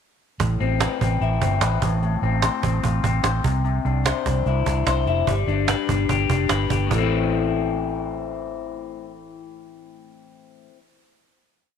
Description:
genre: jangly indie pop.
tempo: 147 BPM.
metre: 4/4.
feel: straight.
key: A minor.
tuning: A4 = 441 Hz.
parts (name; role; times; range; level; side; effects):
electric guitar through a small old amp; arpeggios; 0.4-10.8 s; A2 to C5; -24 LUFS; left 11 dB; phaser, tape echo.
vintage muted fingered electric bass; bass; 0.4-10.7 s; F1 to C2; -23 LUFS; right 2 dB; tube saturation.
cajon; drums; 0.4-7.0 s; none; -25 LUFS; right 8 dB; none.
room: light reverb, studio reverb.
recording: 1960s-style stereo with parts hard left and right.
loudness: -20 LUFS.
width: side -7 dB against mid.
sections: 0.4-6.9 verse; 6.9-10.2 final chord.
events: none.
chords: 0.4 Amadd9; 1.8 F/A; 3.4 Cadd9; 5.3 G; 6.9 Amadd9.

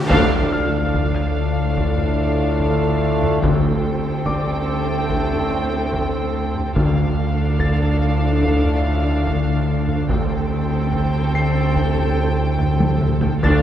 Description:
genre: cinematic, suspense film score.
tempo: 72 BPM.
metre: 4/4.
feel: straight.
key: D minor.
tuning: A4 = 441 Hz.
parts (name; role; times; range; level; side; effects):
timpani; percussion; 0.0-13.6 s; D3; -26 LUFS; left 1 dB; none.
riser and impact; sound effects; 0.0-3.4 s; none; -28 LUFS; equal; none.
clear concert grand piano; texture; 0.0-13.6 s; D5 to C7; -30 LUFS; left 2 dB; none.
muted studio violin section; melody; 0.1-13.6 s; F5 to G5; -29 LUFS; equal; none.
muted studio violin section; second line; 0.1-13.6 s; A4; -30 LUFS; left 2 dB; none.
muted studio viola section; accompaniment; 0.1-13.6 s; C4 to D4; -28 LUFS; right 1 dB; none.
dark French horn section; sustained chords; 0.1-13.6 s; C4 to G4; -28 LUFS; left 4 dB; none.
warm trombone section; sustained chords; 0.1-13.6 s; A2 to A3; -28 LUFS; right 1 dB; none.
marimba with soft mallets; riff; 0.1-13.6 s; D3 to D4; -24 LUFS; left 1 dB; none.
muted studio cello section; bass; 0.1-13.5 s; D2; -27 LUFS; right 2 dB; none.
muted studio double bass section; bass; 0.1-13.5 s; D2; -23 LUFS; right 1 dB; none.
taiko ensemble; drums; 0.1-13.6 s; none; -26 LUFS; equal; none.
room: wet concert hall reverb, RT60 2.1 s.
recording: heard from further back in the room.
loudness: -17 LUFS.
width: side -10 dB against mid.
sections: 0.1-13.6 A section.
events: band accent 0.1-0.9; impact 0.1-3.4; drum fill 12.6-13.4.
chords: 0.1 Dm; 3.4 Am7/D; 6.8 Dm; 10.1 Am7/D.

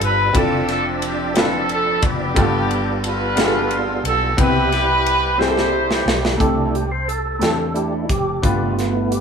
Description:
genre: slow gospel.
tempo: 59 BPM (dotted quarters).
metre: 6/8.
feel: straight.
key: C major.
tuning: A4 = 440 Hz.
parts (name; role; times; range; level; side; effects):
warm horn section; melody; 0.0-6.4 s; B3 to C5; -20 LUFS; equal; none.
warm upright piano; accompaniment; 0.0-9.2 s; G2 to B4; -23 LUFS; left 1 dB; none.
percussive tonewheel organ; sustained chords; 0.0-9.2 s; F3 to E5; -24 LUFS; right 3 dB; slow rotary speaker, overdrive, chorus vibrato.
hollow-body short-scale fingered electric bass; bass; 0.0-9.2 s; F1 to E2; -25 LUFS; left 1 dB; none.
modern studio drum kit; drums; 0.0-9.2 s; hi-hat, kick drum, ride cymbal, snare drum; -22 LUFS; equal; none.
room: light reverb.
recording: band playing live in one room.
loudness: -16 LUFS.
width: side -6 dB against mid.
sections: 0.0-6.4 A section; 6.4-9.2 B section.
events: drum fill 5.4-6.4; tonewheel organ solo 6.4-9.2.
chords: 0.3 Dm9/F; 2.4 G9; 4.4 Cmaj7; 6.4 C6; 8.4 G7.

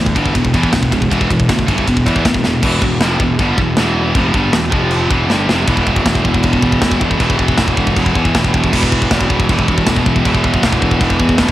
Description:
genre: heavy metal.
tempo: 158 BPM.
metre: 4/4.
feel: straight.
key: E phrygian.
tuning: A4 = 438 Hz.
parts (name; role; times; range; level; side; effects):
heavy high-gain guitar; riff; 0.0-11.5 s; E2 to G3; -16 LUFS; equal; distortion, cassette tape.
fuzz picked electric bass; bass; 0.0-11.5 s; E1 to E2; -17 LUFS; equal; overdrive.
tight metal drum kit; drums; 0.1-11.5 s; china cymbal, crash cymbal, kick drum, ride cymbal, snare drum; -16 LUFS; equal; none.
room: light reverb, small room ambience.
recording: home recording on cassette.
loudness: -12 LUFS.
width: side -14 dB against mid.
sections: 0.0-2.6 A section; 2.6-5.7 B section; 5.7-11.5 C section.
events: drum fill 2.4, 5.3-5.7.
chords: 0.0 Em; 4.7 F5; 5.1 Em; 5.7 E5.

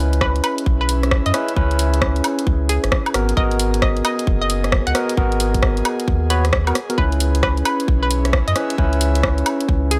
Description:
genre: UK garage, two-step garage.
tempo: 133 BPM.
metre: 4/4.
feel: swing 64% on 16ths.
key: C# dorian.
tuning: A4 = 440 Hz.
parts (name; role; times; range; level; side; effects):
hollow square pluck; melody; 0.0-10.0 s; G#4 to F#5; -28 LUFS; equal; chorus, analog delay.
barky tine electric piano; stabs; 0.0-10.0 s; B3 to C#5; -25 LUFS; equal; overdrive, analog delay.
soft dub sub bass; bass; 0.0-10.0 s; F#1 to F#2; -22 LUFS; equal; sidechain pumping.
airy breathy pad; texture; 0.1-10.0 s; C#4 to E5; -32 LUFS; equal; chorus, sidechain pumping.
garage drum kit; drums; 0.1-10.0 s; hi-hat, rim click, woodblock; -24 LUFS; equal; overdrive, studio ambience.
electronic kick drum; drums; 0.2-9.8 s; none; -22 LUFS; equal; overdrive, studio ambience.
room: digital ambience.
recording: dry, gritty hardware recording, transformer saturation.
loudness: -18 LUFS.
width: mono.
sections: 0.0-10.0 A section.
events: none.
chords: 0.0 C#m7; 3.1 G#m9; 7.0 C#m7.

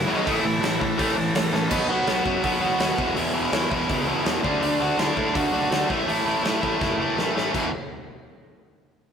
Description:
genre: punk rock.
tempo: 165 BPM.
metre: 4/4.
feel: straight.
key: unclear.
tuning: A4 = 441 Hz.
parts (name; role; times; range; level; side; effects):
raw garage guitar; melody; 0.0-7.1 s; C#4 to F#5; -28 LUFS; right 1 dB; overdrive.
distorted electric guitar; riff; 0.0-7.7 s; E2 to D4; -24 LUFS; equal; overdrive.
high-gain distorted guitar; riff; 0.0-1.7 s; F#2 to A3; -27 LUFS; equal; distortion.
fuzz picked electric bass; bass; 0.1-7.7 s; E1 to A2; -32 LUFS; equal; overdrive.
big rock drum kit; drums; 0.3-7.6 s; crash cymbal, hi-hat, kick drum, snare drum; -28 LUFS; equal; none.
room: moderate stone room reverb, RT60 1.4 s.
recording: rough rehearsal-room recording.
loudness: -20 LUFS.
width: side -7 dB against mid.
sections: 0.0-1.7 A section; 1.7-7.5 B section; 7.5-9.0 C section.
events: drum fill 1.5, 6.8-7.5.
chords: 0.3 A; 1.7 B; 3.0 E5; 4.4 D; 5.9 A5; 7.5 E5.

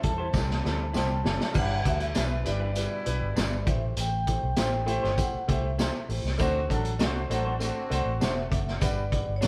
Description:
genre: uptempo 1960s-style soul.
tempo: 99 BPM.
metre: 4/4.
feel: straight.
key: A dorian.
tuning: A4 = 445 Hz.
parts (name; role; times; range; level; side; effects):
vibraphone with medium hard mallets; melody; 0.0-9.5 s; C#5 to A5; -36 LUFS; equal; none.
warm horn section; second line; 0.0-8.5 s; B2 to C5; -40 LUFS; equal; none.
warm grand piano; accompaniment; 0.0-9.5 s; G3 to D5; -36 LUFS; equal; none.
vintage muted fingered electric bass; bass; 0.0-9.5 s; E1 to E2; -33 LUFS; equal; none.
vintage drum kit; drums; 0.0-9.5 s; crash cymbal, hi-hat, kick drum, snare drum; -32 LUFS; equal; none.
electric guitar through a small old amp; stabs; 0.2-9.5 s; D4 to C5; -39 LUFS; equal; spring reverb.
tambourine; percussion; 0.3-9.5 s; none; -48 LUFS; equal; none.
room: moderate stone room reverb, RT60 1.2 s.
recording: band playing live in one room, vinyl crackle.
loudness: -28 LUFS.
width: mono.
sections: 0.0-1.5 A section; 1.5-9.5 B section.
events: drum fill 0.3-1.5.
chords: 0.0 Am7; 1.5 G6; 3.7 Am7; 6.4 D7; 8.8 Gmaj7.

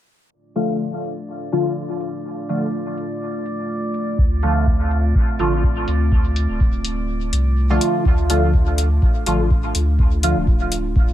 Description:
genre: dub techno.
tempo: 124 BPM.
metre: 4/4.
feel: swing 54% on 16ths.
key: D minor.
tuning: A4 = 440 Hz.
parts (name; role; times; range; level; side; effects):
dark analog pad; sustained chords; 0.3-11.1 s; A3 to F4; -28 LUFS; right 2 dB; wide subtle chorus, sidechain pumping.
drifting glass-harmonics texture; texture; 0.8-8.1 s; D5; -35 LUFS; equal; chorus, built-in reverb, sidechain pumping.
resonant sweep polysynth; stabs; 0.6-10.4 s; D3 to F4; -22 LUFS; equal; chorus, phaser, sidechain pumping, dub echo.
electronic hi-hat; drums; 0.6-10.8 s; none; -27 LUFS; left 3 dB; overdrive, dub echo.
pure sine sub bass; bass; 4.2-11.1 s; D1 to D2; -20 LUFS; equal; sidechain pumping.
electronic kick drum; drums; 4.2-11.1 s; none; -17 LUFS; equal; none.
room: light reverb.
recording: echo-heavy mix, low-pass filter.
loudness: -17 LUFS.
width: side -12 dB against mid.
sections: 0.3-8.1 A section; 8.1-11.1 B section.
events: filter sweep on analog polysynth 0.3-8.1; filter sweep 0.3-8.1; kick drops out 7.1-8.1.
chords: 0.3 Dm.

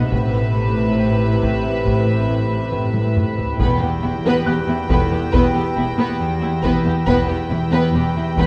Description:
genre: cinematic, suspense film score.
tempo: 69 BPM.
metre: 4/4.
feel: straight.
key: E minor.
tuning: A4 = 439 Hz.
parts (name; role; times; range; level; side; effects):
rich studio violin section; melody; 0.0-8.5 s; E5 to G5; -31 LUFS; equal; none.
rich studio violin section; second line; 0.0-8.5 s; E4 to B4; -28 LUFS; equal; none.
warm studio viola section; accompaniment; 0.0-8.5 s; C3 to B3; -27 LUFS; equal; none.
glass harmonica; sustained chords; 0.0-8.5 s; D#4 to B5; -31 LUFS; equal; none.
concert harp; riff; 0.0-8.5 s; E2 to B3; -25 LUFS; equal; none.
rich studio double bass section; bass; 0.0-8.5 s; E1 to A1; -28 LUFS; equal; none.
warm studio cello section; bass; 0.0-8.4 s; E2 to A2; -25 LUFS; equal; none.
dark baby grand piano; texture; 0.0-8.5 s; A4 to F#6; -34 LUFS; equal; none.
taiko ensemble; drums; 0.1-8.5 s; none; -27 LUFS; equal; none.
timpani; percussion; 3.6-4.9 s; none; barely audible; none; none.
dark studio violin section; texture; 3.6-8.5 s; E6 to A#6; -40 LUFS; equal; none.
room: wet concert hall reverb, RT60 2.4 s.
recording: dark, warm production.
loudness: -18 LUFS.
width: mono.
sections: 0.0-8.5 A section.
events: drum fill 2.7-3.6.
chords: 0.1 Amadd9; 3.6 Em.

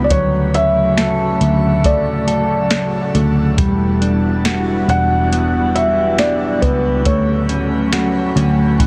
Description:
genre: dream pop.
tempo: 69 BPM.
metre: 4/4.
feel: straight.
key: D major.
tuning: A4 = 440 Hz.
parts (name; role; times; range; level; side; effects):
felt-muted upright piano; melody; 0.0-7.9 s; B4 to F#5; -21 LUFS; equal; digital delay.
string machine, cellos; sustained chords; 0.0-8.9 s; C#3 to F#5; -23 LUFS; equal; ensemble chorus.
mellow electric guitar; arpeggios; 0.0-8.9 s; E3 to A4; -22 LUFS; equal; subtle chorus, digital delay.
vintage muted picked electric bass; bass; 0.0-8.9 s; E1 to D2; -21 LUFS; equal; none.
soft vintage rhythm box; drums; 0.1-8.9 s; hi-hat, kick drum, snare drum; -24 LUFS; equal; none.
room: moderate shimmer reverb, RT60 7.1 s.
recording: heavily compressed radio sound.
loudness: -16 LUFS.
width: mono.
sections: 0.0-8.9 A section.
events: none.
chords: 0.1 Dmaj7; 3.6 Em9; 7.1 Dmaj7.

